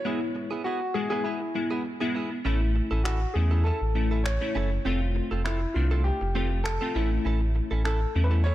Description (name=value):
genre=dance-pop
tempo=100 BPM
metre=4/4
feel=straight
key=A major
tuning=A4 = 439 Hz
part: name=warm concert grand piano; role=melody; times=0.0-8.5 s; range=E4 to C#5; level=-32 LUFS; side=left 1 dB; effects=tape echo
part: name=glassy digital keys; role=accompaniment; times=0.0-8.4 s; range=G#3 to F4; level=-31 LUFS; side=left 3 dB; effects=chorus
part: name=direct-recorded clean electric guitar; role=riff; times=0.0-8.5 s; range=B3 to A4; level=-35 LUFS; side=right 4 dB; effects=lush chorus
part: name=sub bass with octave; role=bass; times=2.5-8.5 s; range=F1 to E2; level=-25 LUFS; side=equal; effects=none
part: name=electronic finger snaps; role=drums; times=3.1-8.0 s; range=none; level=-38 LUFS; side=equal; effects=none
room=light reverb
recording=dark, warm production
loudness=-24 LUFS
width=side -14 dB against mid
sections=0.0-8.5 A section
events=none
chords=0.1 E; 2.5 A; 4.9 F; 7.0 A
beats=| 0.05 0.65 1.25 1.85 | 2.45 3.05 3.65 4.25 | 4.85 5.45 6.05 6.65 | 7.25 7.85 8.45